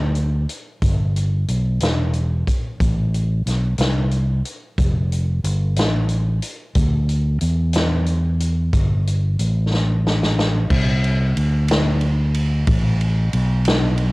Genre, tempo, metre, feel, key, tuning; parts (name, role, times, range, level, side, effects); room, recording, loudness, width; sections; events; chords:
slow gospel; 61 BPM (dotted quarters); 6/8; straight; C major; A4 = 441 Hz
fingered electric bass; bass; 0.0-14.1 s; E1 to E2; -18 LUFS; equal
swinging big-band drum kit; drums; 0.1-14.1 s; crash cymbal, hi-hat, kick drum, ride cymbal, snare drum; -22 LUFS; equal; cassette tape
little or no reverb; home recording on cassette; -17 LUFS; side -23 dB against mid
0.0-10.7 A section; 10.7-14.1 B section
drum fill 9.7-10.7